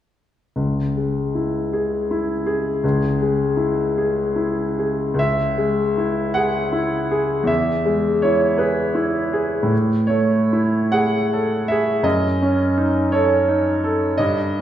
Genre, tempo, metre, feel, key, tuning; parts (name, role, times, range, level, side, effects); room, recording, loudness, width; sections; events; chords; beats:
classical, romantic nocturne for solo piano; 47-58 BPM (dotted quarters); 6/8; rubato; C# minor; A4 = 439 Hz
bright grand piano; solo; 0.6-14.6 s; C#2 to F#5; -17 LUFS; equal
wet recital hall reverb, RT60 1.6 s; recorded in a church or concert hall; -17 LUFS; side -11 dB against mid
0.6-5.2 A section; 5.2-14.6 B section
0.6 C#m; 7.5 E; 9.7 Amaj7; 12.0 D#m7b5/F#
| 0.56 1.73 | 2.83 3.95 | 5.18 6.35 | 7.49 8.61 | 9.72 10.93 | 12.05 13.12 | 14.19